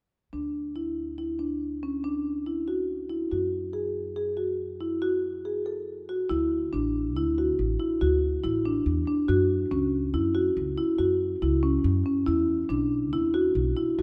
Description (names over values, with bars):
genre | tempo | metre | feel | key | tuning
contemporary instrumental, contemporary | 141 BPM | 7/4 | straight | unclear | A4 = 440 Hz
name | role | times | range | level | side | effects
marimba with medium mallets | arpeggios | 0.3-14.0 s | C#4 to A4 | -28 LUFS | equal | none
upright bass | bass | 0.3-14.0 s | A1 to F#2 | -33 LUFS | equal | none
room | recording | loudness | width
moderate concert hall reverb, RT60 2.0 s | none | -27 LUFS | mono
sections
0.3-6.3 A section; 6.3-14.0 B section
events
none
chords
0.3 Dsus2; 3.3 F#sus2; 6.3 Dsus2; 9.3 F#5; 12.3 E5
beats
| 0.33 0.76 1.19 1.61 2.04 2.47 2.89 | 3.32 3.75 4.17 4.60 5.03 5.46 5.88 | 6.31 6.74 7.16 7.59 8.01 8.44 8.87 | 9.29 9.72 10.14 10.57 11.00 11.42 11.85 | 12.28 12.70 13.13 13.55 13.98